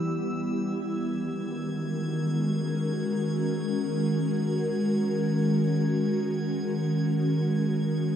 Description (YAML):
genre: ambient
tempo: free time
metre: none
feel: none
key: unclear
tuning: A4 = 440 Hz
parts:
  - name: ethereal airy pad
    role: sustained chords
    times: 0.0-8.2 s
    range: D#3 to A#4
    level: -25 LUFS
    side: equal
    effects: ensemble chorus, built-in reverb
  - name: drifting glass-harmonics texture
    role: texture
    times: 0.0-8.2 s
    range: E6 to G#6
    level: -43 LUFS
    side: equal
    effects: chorus, built-in reverb
room: wet huge ambient reverb, RT60 9.6 s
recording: in a vast, echoing space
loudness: -25 LUFS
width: side -9 dB against mid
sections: 0.0-8.2 A section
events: fade-out on synth texture 0.0-8.2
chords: 0.0 Em; 0.6 G#sus4; 6.0 F#69/D#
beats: free time